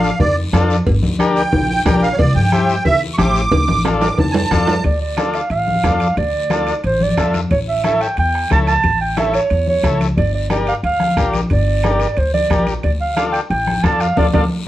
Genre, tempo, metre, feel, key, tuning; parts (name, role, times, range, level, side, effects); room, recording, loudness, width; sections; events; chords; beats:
latin, cumbia; 180 BPM; 4/4; straight; D minor, D harmonic minor from 4.8 s; A4 = 445 Hz
musette accordion; melody; 0.0-4.8 s; C#5 to D6; -18 LUFS; right 3 dB
overdriven combo organ; accompaniment; 0.0-14.4 s; D4 to E5; -20 LUFS; left 4 dB
upright bass; bass; 0.0-14.5 s; G1 to G2; -19 LUFS; equal
guiro; percussion; 0.0-14.4 s; -34 LUFS; left 5 dB
bombo; percussion; 0.2-14.4 s; -22 LUFS; left 1 dB
congas; percussion; 0.2-14.4 s; -21 LUFS; left 2 dB
cowbell and timbales; percussion; 0.2-14.4 s; -24 LUFS; right 4 dB
dark clarinet; second line; 4.9-14.4 s; C5 to A5; -18 LUFS; right 3 dB
moderate studio reverb, RT60 0.6 s; worn, warbling old tape, cassette tape, warbly pitch drift; -14 LUFS; side -14 dB against mid
0.0-4.8 A section; 4.8-14.7 B section
accordion solo 0.0-4.8; drum fill 3.5-4.8; clarinet solo 4.8-14.7; band accent 14.2-14.7
0.0 Dm; 0.9 Gm; 2.2 C; 3.5 Dm; 7.5 A7; 10.2 Gm; 12.8 Dm
0.20 0.53 | 0.86 1.19 1.53 1.86 | 2.19 2.52 2.85 3.18 | 3.52 3.85 4.18 4.51 | 4.84 5.18 5.51 5.84 | 6.18 6.51 6.84 7.18 | 7.51 7.84 8.18 8.51 | 8.84 9.17 9.51 9.84 | 10.17 10.51 10.84 11.17 | 11.51 11.84 12.17 12.50 | 12.84 13.17 13.50 13.84 | 14.17